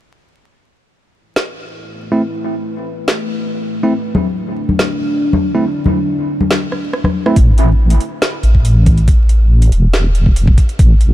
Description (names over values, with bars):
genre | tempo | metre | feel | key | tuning
deep dubstep | 140 BPM | 4/4 | half-time | unclear | A4 = 438 Hz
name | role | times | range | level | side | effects
deep dark ambient pad | sustained chords | 2.0-7.3 s | A3 to B4 | -21 LUFS | equal | chorus, built-in reverb
garage drum kit | drums | 1.4-11.1 s | hi-hat, rim click, snare drum | -20 LUFS | equal | overdrive, studio ambience
bell-like tine electric piano | stabs | 2.1-7.4 s | A3 to E4 | -20 LUFS | right 1 dB | low-pass filter, dub echo
congas | percussion | 4.1-7.1 s | none | -18 LUFS | left 3 dB | dub echo
deep soft wobble bass | bass | 7.4-11.1 s | E1 to A1 | -10 LUFS | equal | chorus
electronic kick drum | drums | 7.4-10.9 s | none | -10 LUFS | equal | overdrive, studio ambience
room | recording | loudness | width
digital ambience | dark, warm production, vinyl crackle | -11 LUFS | side -14 dB against mid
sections
0.5-7.4 A section; 7.4-11.1 B section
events
filter sweep on ambient pad 0.5-7.4; drum fill 6.7-7.4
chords
0.5 A5